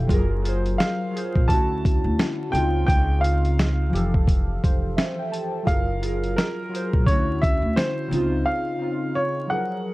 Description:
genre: lo-fi hip hop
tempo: 86 BPM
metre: 4/4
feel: swing 59% on 16ths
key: unclear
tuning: A4 = 441 Hz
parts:
  - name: warbly lo-fi synth keys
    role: accompaniment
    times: 0.0-9.9 s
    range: Db3 to A5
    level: -26 LUFS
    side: equal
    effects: chorus, phaser, cassette tape, low-pass filter
  - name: upright bass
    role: bass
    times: 0.0-8.4 s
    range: F1 to D2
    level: -24 LUFS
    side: equal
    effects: none
  - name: dusty soul sampler-style drum kit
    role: drums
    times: 0.1-8.3 s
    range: hi-hat, kick drum, snare drum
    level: -22 LUFS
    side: equal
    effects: vintage 12-bit sampler grit
  - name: bright upright piano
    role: melody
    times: 0.8-9.9 s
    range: Bb4 to A5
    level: -27 LUFS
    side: equal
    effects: low-pass filter
room: small room ambience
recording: dark, warm production, vinyl crackle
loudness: -20 LUFS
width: side -19 dB against mid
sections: 0.0-9.9 A section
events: synth keys fill 4.3-5.7; break 8.5-9.9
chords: 0.1 Gbmaj9; 1.5 Dmaj9; 2.5 Dbmaj9; 3.9 Fmaj9; 5.7 Gbmaj9; 7.1 Dmaj9; 8.1 Dbmaj9

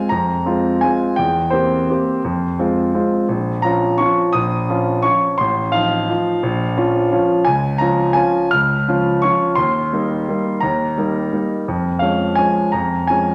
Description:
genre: classical, piano waltz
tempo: 171 BPM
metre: 3/4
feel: uneven beats, rubato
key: F minor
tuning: A4 = 440 Hz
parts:
  - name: clear concert grand piano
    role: solo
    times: 0.0-13.3 s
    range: A1 to F6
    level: -18 LUFS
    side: equal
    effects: none
room: wet recital hall reverb, RT60 1.5 s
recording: none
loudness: -18 LUFS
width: mono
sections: 0.0-13.3 A section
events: none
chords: 0.0 Fm; 1.2 C7/E; 2.2 Fm; 3.3 Bbm; 5.4 F7/A; 6.4 Bbm; 7.5 Db; 9.6 Eb; 11.7 Db/F

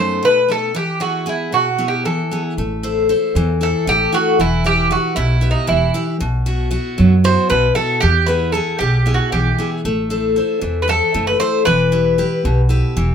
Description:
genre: greek folk, Greek bouzouki band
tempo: 231 BPM (eighths)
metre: 7/8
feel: straight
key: unclear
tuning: A4 = 440 Hz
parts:
  - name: Greek bouzouki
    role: melody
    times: 0.0-12.7 s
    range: D#4 to C5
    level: -17 LUFS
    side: right 1 dB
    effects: none
  - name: picked steel-string acoustic guitar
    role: accompaniment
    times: 0.0-13.1 s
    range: F#2 to C5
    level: -18 LUFS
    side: left 1 dB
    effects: none
  - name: upright bass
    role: bass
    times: 2.6-13.1 s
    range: E1 to F#2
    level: -19 LUFS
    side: equal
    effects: none
room: moderate studio reverb, RT60 0.6 s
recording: minimal, uncompressed stereo recording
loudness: -14 LUFS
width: side -7 dB against mid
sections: 0.0-2.6 A section; 2.6-13.1 A section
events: none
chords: 0.0 B7; 0.8 E; 2.6 Am; 4.4 Em; 6.2 Bsus4; 8.0 E; 9.9 Am; 11.7 Em

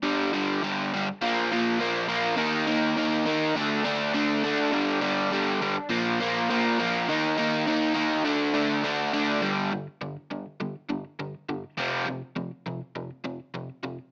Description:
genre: punk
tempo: 204 BPM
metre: 4/4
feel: straight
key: unclear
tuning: A4 = 439 Hz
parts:
  - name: crunchy overdriven guitar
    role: solo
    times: 0.0-14.0 s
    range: F2 to Eb4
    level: -23 LUFS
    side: equal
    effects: none
room: moderate studio reverb, RT60 0.7 s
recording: small speaker sound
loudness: -23 LUFS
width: side -38 dB against mid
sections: 0.1-9.4 A section; 9.4-14.1 B section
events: none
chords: 0.1 G5; 1.1 Bb5; 2.4 Eb5; 3.6 D5; 4.7 G5; 5.8 Bb5; 7.1 Eb5; 8.3 D5; 9.4 G5; 11.6 F5

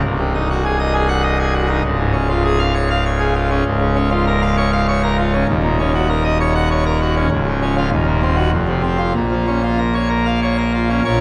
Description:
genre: classical, organ toccata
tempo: 99 BPM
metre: 3/4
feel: straight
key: Db major, Bb minor from 3.7 s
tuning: A4 = 440 Hz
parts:
  - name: pipe organ, full organ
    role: solo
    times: 0.0-11.2 s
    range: C1 to Gb5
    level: -17 LUFS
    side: equal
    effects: none
room: wet church reverb, RT60 3.5 s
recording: none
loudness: -17 LUFS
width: mono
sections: 0.0-11.1 A section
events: none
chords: 0.1 Ab7/C; 1.9 Db; 3.7 Bbm/Db; 5.5 Ebm7; 7.3 Db; 7.9 Cm7b5/Eb; 8.5 F5; 9.2 Bbm

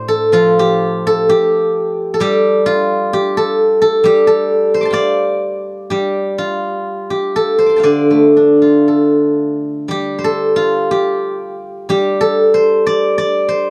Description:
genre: chinese traditional, Chinese solo plucked strings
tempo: 57-66 BPM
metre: 4/4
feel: rubato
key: unclear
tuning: A4 = 440 Hz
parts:
  - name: steel-string zither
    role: solo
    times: 0.0-13.7 s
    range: A2 to D6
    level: -14 LUFS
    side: equal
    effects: none
room: light reverb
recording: dry, close 1970s-style studio recording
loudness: -14 LUFS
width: mono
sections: 0.0-9.9 A section; 9.9-13.7 B section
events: none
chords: none

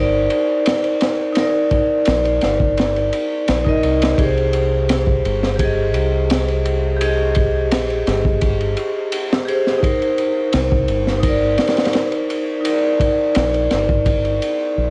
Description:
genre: trip hop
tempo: 85 BPM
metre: 4/4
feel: straight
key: C minor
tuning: A4 = 443 Hz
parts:
  - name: vibraphone with medium hard mallets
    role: accompaniment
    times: 0.0-14.9 s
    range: Eb4 to Eb5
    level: -20 LUFS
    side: equal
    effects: harmonic tremolo, tape echo
  - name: deep dub fingered electric bass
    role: bass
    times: 0.0-14.9 s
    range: G1 to C2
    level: -23 LUFS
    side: equal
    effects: none
  - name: crunchy breakbeat drum kit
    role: drums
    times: 0.3-14.6 s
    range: kick drum, ride cymbal, snare drum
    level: -23 LUFS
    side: equal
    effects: cassette tape
room: moderate booth ambience, RT60 0.2 s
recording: home recording on cassette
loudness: -18 LUFS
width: mono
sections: 0.0-14.9 A section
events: none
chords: 0.0 Cm7; 4.2 Abmaj7; 9.8 Cm7

